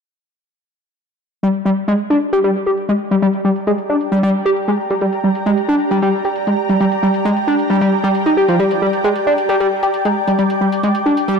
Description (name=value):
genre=driving peak-time techno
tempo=134 BPM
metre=4/4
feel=straight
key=G minor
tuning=A4 = 438 Hz
part: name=overdriven synth lead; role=riff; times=1.4-11.3 s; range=F3 to G4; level=-15 LUFS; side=left 1 dB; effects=distortion, chorus, dub echo
part: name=electronic hi-hat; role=drums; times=1.4-11.4 s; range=none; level=-43 LUFS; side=equal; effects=low-pass filter on hats
part: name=ethereal airy pad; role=texture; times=2.3-11.4 s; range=G4 to D6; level=-20 LUFS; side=right 2 dB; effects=ensemble chorus, built-in reverb, phaser
room=moderate lush hall reverb, RT60 1.5 s, digital ambience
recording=none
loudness=-14 LUFS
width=side -6 dB against mid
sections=1.4-11.4 A section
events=filter sweep on drum 1.4-11.4; filter sweep on analog synth lead 1.4-11.4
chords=1.4 Gm